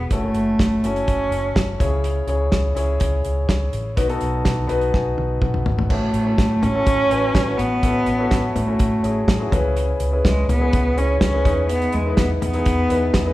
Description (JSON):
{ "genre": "piano-driven pop", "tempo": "124 BPM", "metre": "4/4", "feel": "straight", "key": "unclear", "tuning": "A4 = 440 Hz", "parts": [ { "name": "rich cello", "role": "melody", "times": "0.0-1.8, 5.9-13.3 s", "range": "G#3 to C#4", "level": "-21 LUFS", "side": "equal", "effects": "none" }, { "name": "clear concert grand piano", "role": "accompaniment", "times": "0.0-13.3 s", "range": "A2 to B5", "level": "-24 LUFS", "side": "left 2 dB", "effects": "none" }, { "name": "vintage muted fingered electric bass", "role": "bass", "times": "0.0-13.3 s", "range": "F#1 to E2", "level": "-24 LUFS", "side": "equal", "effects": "none" }, { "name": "damped 70s drum kit", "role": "drums", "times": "0.1-13.3 s", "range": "crash cymbal, hi-hat, kick drum, snare drum, toms", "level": "-21 LUFS", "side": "equal", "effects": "none" } ], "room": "moderate recital hall reverb, RT60 1.6 s", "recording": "recorded in a church or concert hall", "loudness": "-17 LUFS", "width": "side -16 dB against mid", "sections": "0.0-5.9 A section; 5.9-13.3 B section", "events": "grand piano fill 4.5-5.9; drum fill 4.9-5.9", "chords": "0.1 F#m7; 1.8 C#m; 4.0 B; 5.9 A6; 7.8 F#m7/A; 9.5 C#m7; 11.5 Emaj7" }